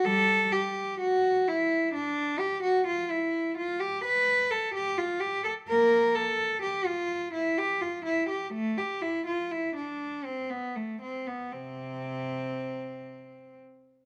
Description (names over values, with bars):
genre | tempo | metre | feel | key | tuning
classical, baroque-style suite movement for unaccompanied cello | 63 BPM | 3/4 | uneven beats, rubato | C major | A4 = 440 Hz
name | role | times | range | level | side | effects
rich cello | solo | 0.0-13.6 s | C3 to B4 | -29 LUFS | equal | none
room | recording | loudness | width
light reverb | none | -29 LUFS | mono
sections
0.0-14.1 A section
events
none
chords
none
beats
| 0.05 0.99 1.93 | 2.86 3.81 4.74 | 5.69 6.64 7.58 | 8.54 9.51 10.51 | 11.52 12.55